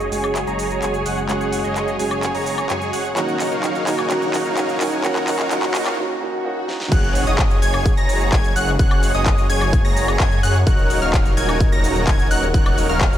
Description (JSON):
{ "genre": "EDM, festival progressive house", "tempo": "128 BPM", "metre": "4/4", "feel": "straight", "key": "F# major", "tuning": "A4 = 440 Hz", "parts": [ { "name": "dark concert grand piano", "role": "accompaniment", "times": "0.0-6.9 s", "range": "D#3 to G#4", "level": "-26 LUFS", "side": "right 2 dB", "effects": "sidechain pumping, tape echo" }, { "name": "lush unison pad", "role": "sustained chords", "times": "0.0-13.2 s", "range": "C#3 to A#4", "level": "-28 LUFS", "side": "equal", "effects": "chorus, sidechain pumping" }, { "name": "dense compressed supersaw", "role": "riff", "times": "0.0-13.2 s", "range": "D#4 to A#5", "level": "-23 LUFS", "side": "right 1 dB", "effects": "sidechain pumping, low-pass filter, tape echo" }, { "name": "wide detuned saw bass", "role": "bass", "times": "0.0-13.2 s", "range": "D#1 to F#2", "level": "-25 LUFS", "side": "equal", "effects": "chorus, sidechain pumping" }, { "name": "big-room dance drum kit", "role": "drums", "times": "0.0-13.2 s", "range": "crash cymbal, handclaps, hi-hat, shaker, snare drum, woodblock", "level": "-26 LUFS", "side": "left 1 dB", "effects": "none" }, { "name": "riser, swell and impact", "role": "sound effects", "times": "2.4-8.8 s", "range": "none", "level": "-31 LUFS", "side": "equal", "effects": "none" }, { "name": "plucky unison lead", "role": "arpeggios", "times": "6.9-13.2 s", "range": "D#6 to A#6", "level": "-25 LUFS", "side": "left 1 dB", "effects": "sidechain pumping, tape echo" }, { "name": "electronic kick drum", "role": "drums", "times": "6.9-13.1 s", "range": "none", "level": "-17 LUFS", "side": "equal", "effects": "none" } ], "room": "light reverb, digital ambience", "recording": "high-pass filter", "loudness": "-16 LUFS", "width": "side -11 dB against mid", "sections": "0.0-6.9 A section; 6.9-13.2 B section", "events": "build-up 0.0-6.9; drum fill 0.0-6.0, 6.7; break 6.0-6.9; swell 6.0-6.9; drop 6.9-13.2; impact 6.9-8.8", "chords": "0.0 F#sus2; 3.2 D#m7; 6.9 F#sus2; 10.7 D#m7" }